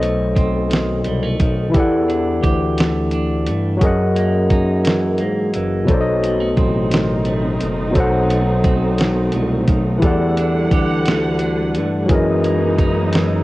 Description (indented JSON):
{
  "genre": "slow six-eight R&B",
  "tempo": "58 BPM (dotted quarters)",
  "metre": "6/8",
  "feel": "straight",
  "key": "E harmonic minor",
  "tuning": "A4 = 440 Hz",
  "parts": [
    { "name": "clean electric guitar", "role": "second line", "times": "0.0-13.4 s", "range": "F#2 to G4", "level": "-26 LUFS", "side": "right 4 dB", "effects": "vibrato effect, cassette tape" },
    { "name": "barky tine electric piano", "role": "accompaniment", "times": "0.0-13.4 s", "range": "B2 to F#5", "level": "-18 LUFS", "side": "left 1 dB", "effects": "overdrive, cassette tape" },
    { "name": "smooth gliding synth bass", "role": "bass", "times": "0.0-13.4 s", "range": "F#1 to G#2", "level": "-22 LUFS", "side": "equal", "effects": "transformer saturation" },
    { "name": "dusty soul sampler-style drum kit", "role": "drums", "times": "0.0-13.3 s", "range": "hi-hat, kick drum, snare drum", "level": "-18 LUFS", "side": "equal", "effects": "cassette tape" },
    { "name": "warm symphonic string section", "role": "sustained chords", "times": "5.9-13.4 s", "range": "B2 to F#5", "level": "-25 LUFS", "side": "right 1 dB", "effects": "cassette tape" }
  ],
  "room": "little or no reverb",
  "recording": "home recording on cassette",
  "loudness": "-15 LUFS",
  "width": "side -18 dB against mid",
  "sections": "0.0-13.4 A section",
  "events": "none",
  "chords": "0.0 B7b9; 1.7 Em11; 3.8 F#13; 5.9 B7b9; 10.0 Em11; 12.1 F#13",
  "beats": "0.71 | 1.74 2.78 | 3.81 4.85 | 5.88 6.92 | 7.95 8.98 | 10.02 11.05 | 12.09 13.12"
}